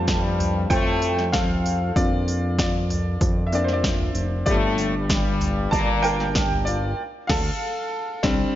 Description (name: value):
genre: piano-driven pop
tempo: 96 BPM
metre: 4/4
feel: straight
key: unclear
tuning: A4 = 445 Hz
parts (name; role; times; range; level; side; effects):
- warm French horn section; second line; 0.0-6.3 s; G2 to Bb3; -26 LUFS; left 3 dB; none
- clear upright piano; accompaniment; 0.0-8.6 s; Bb2 to A5; -25 LUFS; equal; none
- fat analog bass; bass; 0.0-8.4 s; F1 to F2; -25 LUFS; equal; none
- deep house drum kit; drums; 0.1-8.4 s; crash cymbal, hi-hat, kick drum, snare drum, toms; -24 LUFS; equal; none
room: light reverb, digital ambience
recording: nothing above 7.5 kHz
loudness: -20 LUFS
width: side -12 dB against mid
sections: 0.0-8.6 A section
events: upright piano solo 0.0-8.6; band accent 7.0-8.6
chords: 0.0 Fadd9; 2.0 Bbadd9/F; 4.5 Gm; 7.0 Dm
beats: 0.07 0.70 1.33 | 1.96 2.59 3.21 3.84 | 4.47 5.10 5.72 6.35 | 6.98 7.61 8.24